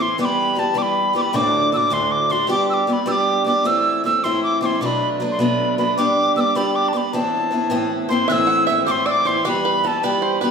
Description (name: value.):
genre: celtic folk, Celtic jig.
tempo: 104 BPM (dotted quarters).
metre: 6/8.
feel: straight.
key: A dorian.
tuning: A4 = 440 Hz.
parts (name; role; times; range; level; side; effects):
wooden whistle; melody; 0.0-10.5 s; A5 to F#6; -19 LUFS; equal; none.
picked acoustic archtop guitar; accompaniment; 0.0-10.5 s; D2 to G4; -20 LUFS; equal; none.
bluegrass banjo; second line; 8.1-10.5 s; A4 to F#5; -24 LUFS; right 3 dB; none.
room: wet recital hall reverb, RT60 1.4 s.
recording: recorded in a church or concert hall.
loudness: -16 LUFS.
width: side -6 dB against mid.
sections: 0.0-8.3 A section; 8.3-10.5 A section.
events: none.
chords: 0.2 Em; 1.3 D; 2.5 G; 3.7 Am; 4.8 Bm7; 6.0 G; 7.1 Amadd9; 8.3 Am; 9.4 Em.